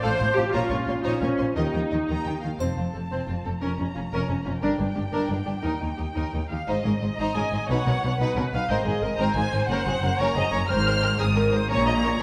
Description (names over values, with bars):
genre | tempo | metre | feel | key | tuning
cinematic, heroic adventure film score | 119 BPM (dotted quarters) | 6/8 | straight | Ab mixolydian from 6.7 s | A4 = 442 Hz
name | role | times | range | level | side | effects
rich chamber violin section | melody | 0.0-12.2 s | Eb5 to F6 | -34 LUFS | equal | none
warm symphonic violin section | second line | 0.0-12.2 s | Bb3 to Bb5 | -34 LUFS | equal | none
clear symphonic viola section | accompaniment | 0.0-12.2 s | C4 to Eb5 | -30 LUFS | equal | none
clear symphonic double bass section | bass | 0.0-12.2 s | F1 to Eb2 | -32 LUFS | equal | none
warm symphonic cello section | bass | 0.0-12.2 s | Eb2 to Eb3 | -31 LUFS | equal | none
mellow French horn section | sustained chords | 0.4-2.4 s | Bb3 to C5 | -33 LUFS | equal | none
triangle | percussion | 2.6-3.2 s | none | -50 LUFS | equal | none
room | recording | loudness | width
wet scoring stage reverb, RT60 1.8 s | none | -25 LUFS | mono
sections
0.0-2.6 A section; 2.6-6.7 B section; 6.7-12.2 C section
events
none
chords
0.0 F/A; 0.5 Bbmadd9; 1.6 Eb; 2.6 F; 3.6 Bbm/F; 4.6 Gm; 5.6 Eb; 6.7 Ab; 7.7 B; 8.7 Abadd9; 9.7 Gb; 10.7 Abadd9; 11.7 Bbm